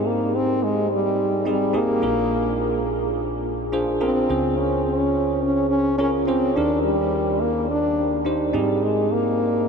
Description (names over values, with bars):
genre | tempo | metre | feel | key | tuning
pop | 106 BPM | 4/4 | swing 55% on 16ths | Eb major | A4 = 440 Hz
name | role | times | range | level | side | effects
warm French horn | melody | 0.0-9.7 s | G3 to D4 | -22 LUFS | left 1 dB | ping-pong delay
bell-like tine electric piano | accompaniment | 0.0-9.7 s | Bb1 to C5 | -22 LUFS | right 1 dB | analog chorus
room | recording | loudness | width
wet huge ambient reverb, RT60 8.1 s | dreamy mix soaked in reverb | -19 LUFS | side -5 dB against mid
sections
0.0-9.7 A section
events
none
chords
0.0 Abmaj7; 2.0 Bb7; 4.3 Dbmaj7; 6.6 Ebmaj7; 8.5 Abmaj7